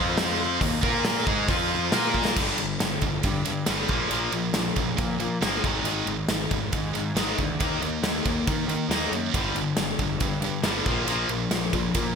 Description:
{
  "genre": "hard rock",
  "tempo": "138 BPM",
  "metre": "4/4",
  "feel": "straight",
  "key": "G phrygian",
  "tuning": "A4 = 440 Hz",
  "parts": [
    { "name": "overdriven tonewheel organ", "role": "sustained chords", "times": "0.0-2.4 s", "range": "Eb4 to C6", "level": "-35 LUFS", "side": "equal", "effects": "slow rotary speaker, chorus vibrato" },
    { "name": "heavy high-gain guitar", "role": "riff", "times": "0.0-12.1 s", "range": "G2 to Bb4", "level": "-28 LUFS", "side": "right 11 dB", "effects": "distortion" },
    { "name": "overdriven electric guitar", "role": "riff", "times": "0.0-12.1 s", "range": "G2 to Bb4", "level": "-29 LUFS", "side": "left 11 dB", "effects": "none" },
    { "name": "fuzz picked electric bass", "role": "bass", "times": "0.0-12.1 s", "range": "G1 to Eb3", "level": "-31 LUFS", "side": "equal", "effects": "overdrive" },
    { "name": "gated 80s drum kit", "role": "drums", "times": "0.2-12.0 s", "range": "crash cymbal, hi-hat, kick drum, ride cymbal, snare drum", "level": "-27 LUFS", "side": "equal", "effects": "gated reverb" }
  ],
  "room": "light reverb, small room ambience",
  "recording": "bright 1980s-style digital production, faint mains hum",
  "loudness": "-23 LUFS",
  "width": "side -6 dB against mid",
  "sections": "0.0-2.4 A section; 2.4-12.2 B section",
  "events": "drum fill 2.1",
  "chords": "0.0 F5; 0.6 Eb5; 0.8 Bb5; 1.3 Eb5; 1.5 F5; 1.9 Bb5; 2.4 G5; 3.9 Bb5; 5.6 Ab5; 7.6 Eb5; 9.3 G5; 10.9 Bb5"
}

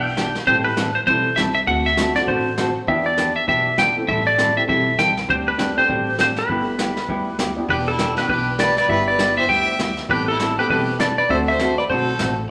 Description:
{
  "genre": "country, western swing",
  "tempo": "200 BPM",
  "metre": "4/4",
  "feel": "swing 60% on 8ths",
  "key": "unclear",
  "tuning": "A4 = 439 Hz",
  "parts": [
    { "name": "clean lap steel guitar", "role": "melody", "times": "0.0-12.3 s", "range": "A4 to G5", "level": "-21 LUFS", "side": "equal", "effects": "none" },
    { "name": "hollow-body jazz guitar", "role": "accompaniment", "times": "0.0-12.3 s", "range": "D3 to A4", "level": "-27 LUFS", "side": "equal", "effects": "none" },
    { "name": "warm upright piano", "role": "accompaniment", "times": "0.0-11.7 s", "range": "A3 to A4", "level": "-31 LUFS", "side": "equal", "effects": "none" },
    { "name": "upright bass", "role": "bass", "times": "0.0-12.4 s", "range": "E1 to E2", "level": "-32 LUFS", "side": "equal", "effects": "none" },
    { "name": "vintage brush drum kit", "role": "drums", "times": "0.2-12.5 s", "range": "brushed snare drum, hi-hat, kick drum, snare drum", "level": "-31 LUFS", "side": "equal", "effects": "none" },
    { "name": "bright fiddle", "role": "second line", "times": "7.7-12.3 s", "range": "E4 to E5", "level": "-28 LUFS", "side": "equal", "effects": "none" }
  ],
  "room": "wet large studio reverb, RT60 1.2 s",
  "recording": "none",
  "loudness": "-19 LUFS",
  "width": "mono",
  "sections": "0.0-12.5 A section",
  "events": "none",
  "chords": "0.5 Am7; 1.7 D7; 2.9 Em7; 4.1 Am7; 5.3 D7sus4; 6.5 G69; 7.7 Em7; 8.9 G6; 10.1 Am9; 11.3 D7"
}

